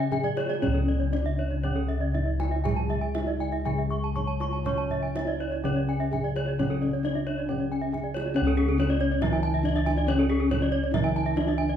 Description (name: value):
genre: Balinese gamelan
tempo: 119-140 BPM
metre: 4/4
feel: straight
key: C# pelog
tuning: A4 = 440 Hz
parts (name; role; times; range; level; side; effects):
- gamelan-type bronze metallophone; melody; 0.0-11.8 s; C#4 to C#5; -29 LUFS; left 1 dB; none
- gamelan-type bronze metallophone; accompaniment; 0.0-11.8 s; C#3 to C#4; -34 LUFS; right 3 dB; none
- gamelan-type bronze metallophone; arpeggios; 0.0-11.7 s; A4-20c to A5-20c; -35 LUFS; right 7 dB; none
- gamelan-type bossed gongs; bass; 0.0-11.8 s; C#2 to C#5; -28 LUFS; left 2 dB; none
- gamelan-type bronze metallophone; arpeggios; 0.1-11.8 s; G#4-30c to C#6; -33 LUFS; left 3 dB; none
- kendang; percussion; 0.1-11.7 s; none; -34 LUFS; right 4 dB; none
room: moderate recital hall reverb, RT60 1.4 s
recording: dark, warm production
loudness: -24 LUFS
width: side -9 dB against mid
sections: 0.0-8.4 A section; 8.4-11.8 B section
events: drum fill 0.1-0.6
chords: none